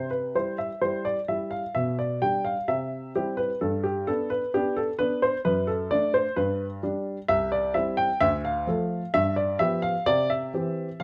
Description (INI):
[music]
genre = classical-period piano sonatina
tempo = 130 BPM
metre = 4/4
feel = straight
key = unclear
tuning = A4 = 441 Hz
[part]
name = dark baby grand piano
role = solo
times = 0.0-11.0 s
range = C2 to G5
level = -26 LUFS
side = equal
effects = none
[sound]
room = light reverb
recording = dark, warm production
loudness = -26 LUFS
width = mono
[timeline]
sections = 0.0-11.0 A section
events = none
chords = 0.0 C; 1.8 G/B; 2.7 C; 3.6 G; 5.5 D/F#; 6.4 G; 7.3 C; 8.2 Dm; 9.1 G7; 10.1 C